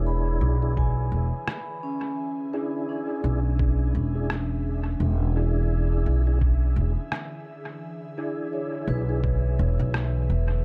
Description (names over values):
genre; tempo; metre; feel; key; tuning
ambient dub; 85 BPM; 4/4; swing 58% on 16ths; E mixolydian; A4 = 441 Hz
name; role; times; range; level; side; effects
airy breathy pad; sustained chords; 0.0-10.6 s; D3 to E5; -43 LUFS; equal; chorus, phaser
vibraphone with medium mallets; arpeggios; 0.0-10.6 s; C#4 to B5; -36 LUFS; equal; tape echo
tonewheel organ; stabs; 0.0-9.2 s; D4 to G#4; -36 LUFS; equal; chorus vibrato, slow rotary speaker, dub echo
upright bass; bass; 0.0-10.6 s; E1 to B1; -25 LUFS; equal; none
electronic kick drum; drums; 0.8-9.4 s; none; -28 LUFS; equal; none
electronic rim click; drums; 1.5-10.1 s; none; -37 LUFS; equal; dub echo
room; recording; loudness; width
little or no reverb; echo-heavy mix; -25 LUFS; mono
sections
0.0-10.6 A section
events
none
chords
0.0 E7